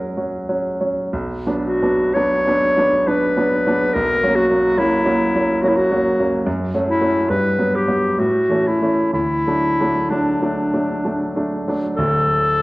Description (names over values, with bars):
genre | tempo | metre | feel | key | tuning
classical, romantic duo for clarinet and grand piano | 56-73 BPM | 3/4 | rubato | D major from 6.5 s | A4 = 440 Hz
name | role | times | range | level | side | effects
bright clarinet | melody | 0.0-12.6 s | D4 to C#5 | -18 LUFS | left 1 dB | none
bright grand piano | accompaniment | 0.0-12.6 s | D1 to D4 | -19 LUFS | right 1 dB | none
room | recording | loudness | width
wet recital hall reverb, RT60 1.5 s | worn, warbling old tape, cassette tape, warbly pitch drift | -16 LUFS | side -20 dB against mid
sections
0.0-12.0 A section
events
none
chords
0.0 F#5; 1.1 Bm; 3.9 F#7/B; 6.5 F#m; 7.3 Gmaj7; 8.2 A; 9.1 D; 12.0 D5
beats
0.17 | 1.12 2.15 3.07 | 3.95 4.78 5.63 | 6.47 7.30 8.19 | 9.14 10.11 11.04 | 11.98